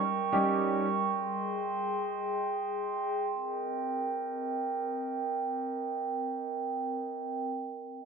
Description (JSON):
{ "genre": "pop", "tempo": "free time", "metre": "none", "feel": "none", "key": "Eb major", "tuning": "A4 = 440 Hz", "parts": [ { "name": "glass harmonica", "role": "sustained chords", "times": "0.0-7.5 s", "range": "G3 to Db6", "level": "-31 LUFS", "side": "right 2 dB", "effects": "low-pass filter" }, { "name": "warm concert grand piano", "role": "accompaniment", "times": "0.3-0.9 s", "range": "G3 to G4", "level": "-30 LUFS", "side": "right 1 dB", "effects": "analog chorus, low-pass filter" } ], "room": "moderate plate reverb, RT60 2.4 s", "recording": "bright 1980s-style digital production", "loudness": "-30 LUFS", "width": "side -5 dB against mid", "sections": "0.0-3.3 A section; 3.3-7.6 B section", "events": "none", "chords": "0.0 Eb7/G; 1.1 Abmaj7; 3.3 Eb6" }